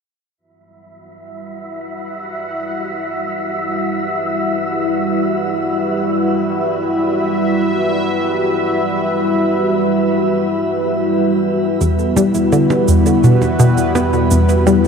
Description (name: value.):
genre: ambient, sequencer-driven space music.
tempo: free time.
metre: none.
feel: none.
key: E minor.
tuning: A4 = 439 Hz.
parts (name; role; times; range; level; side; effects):
sweeping resonant pad; sustained chords; 0.4-14.9 s; G3 to F#5; -16 LUFS; equal; chorus, shimmer reverb.
wind-like tuned noise texture; texture; 1.2-11.8 s; E4 to E5; -24 LUFS; left 1 dB; built-in reverb, shimmer reverb.
wide unison pluck; arpeggios; 11.8-14.9 s; E3 to E5; -31 LUFS; right 3 dB; none.
analog pluck; riff; 11.8-14.9 s; E2 to B3; -14 LUFS; equal; chorus, phaser, analog delay.
analog drone; bass; 13.7-14.9 s; E2; -20 LUFS; right 1 dB; chorus.
shaker and percussion blips; percussion; 11.8-14.9 s; none; -26 LUFS; right 5 dB; analog delay.
room: wet huge ambient reverb, RT60 8.4 s.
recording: none.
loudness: -14 LUFS.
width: side -6 dB against mid.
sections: 0.4-11.8 A section; 11.8-14.9 B section.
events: fade-in on analog synth pad 0.4-11.8.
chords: 0.4 Emadd9.